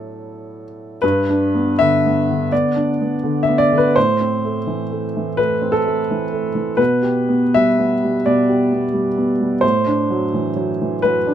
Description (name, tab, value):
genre	neoclassical minimalist piano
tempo	84 BPM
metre	4/4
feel	rubato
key	G major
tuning	A4 = 438 Hz
part	warm upright piano	solo	0.0-11.3 s	G2 to E5	-16 LUFS	equal	none
room	light reverb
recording	minimal, uncompressed stereo recording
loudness	-15 LUFS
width	side -10 dB against mid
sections	0.0-1.0 A section; 1.0-11.3 B section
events	none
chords	0.0 Dadd9/A; 1.0 G; 4.0 Am; 6.8 G/B; 9.6 Dadd9/A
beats	0.25 | 1.02 1.79 2.51 3.23 | 3.96 4.67 5.38 6.09 | 6.79 7.53 8.24 8.93 | 9.63 10.33 11.03